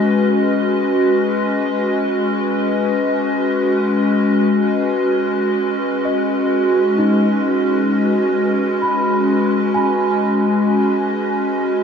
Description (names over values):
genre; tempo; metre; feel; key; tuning
ambient; free time; none; none; unclear; A4 = 440 Hz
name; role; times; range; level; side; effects
evolving wavetable pad; sustained chords; 0.0-11.8 s; G#3 to D#5; -15 LUFS; left 1 dB; chorus, built-in reverb, shimmer reverb
celesta; arpeggios; 6.0-11.8 s; D#4 to B5; -22 LUFS; right 1 dB; diffuse ambient delay, shimmer reverb
room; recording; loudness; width
wet huge ambient reverb, RT60 7.7 s; worn, warbling old tape, cassette tape, warbly pitch drift; -15 LUFS; side -6 dB against mid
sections
0.0-11.8 A section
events
fade-in on celesta 0.0-11.8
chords
0.0 C#sus2